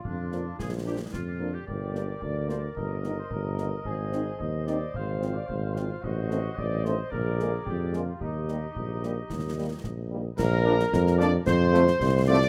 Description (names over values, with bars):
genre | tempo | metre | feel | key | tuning
military-style march for wind band | 110 BPM | 2/4 | straight | Eb major | A4 = 440 Hz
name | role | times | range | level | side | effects
dark trumpet section | melody | 0.0-12.5 s | Eb4 to Eb5 | -37 LUFS | equal | none
clear woodwind section | second line | 0.0-12.5 s | D4 to F5 | -37 LUFS | equal | tape echo
mellow tuba | bass | 0.0-12.5 s | G1 to F2 | -30 LUFS | equal | none
concert bass drum, concert snare drum and clash cymbals | drums | 0.1-12.5 s | none | -40 LUFS | equal | none
mellow French horn section | accompaniment | 0.3-12.4 s | D3 to Eb4 | -32 LUFS | equal | none
hollow piccolo | second line | 10.4-12.5 s | Bb5 to D6 | -38 LUFS | equal | none
mellow trombone section | sustained chords | 10.6-12.4 s | F3 to F4 | -37 LUFS | equal | none
room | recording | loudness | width
studio ambience | rough home demo mix | -28 LUFS | mono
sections
0.0-10.4 A section; 10.4-12.5 B section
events
none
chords
0.0 Bb; 1.7 Gm; 2.8 Eb/G; 3.9 Ab; 4.9 Fm/Ab; 6.0 Adim7; 7.1 Bb7; 8.2 Eb; 10.4 Bb; 11.5 F